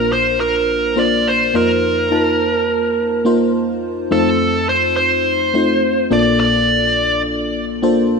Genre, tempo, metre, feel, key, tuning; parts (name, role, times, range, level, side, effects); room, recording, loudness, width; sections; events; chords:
pop; 105 BPM; 4/4; straight; A4 = 441 Hz
dark smooth lead guitar; melody; 0.0-7.2 s; A4 to D5; -16 LUFS; right 1 dB; overdrive, digital delay
FM electric piano with soft pad layer; accompaniment; 0.0-8.2 s; Bb1 to A5; -17 LUFS; left 2 dB; chorus
moderate lush hall reverb, RT60 2.5 s; -14 LUFS; side -4 dB against mid
0.0-4.1 A section; 4.1-8.2 B section
0.0 Bbadd9; 1.5 F7sus4; 4.1 F7; 6.1 Bbmaj7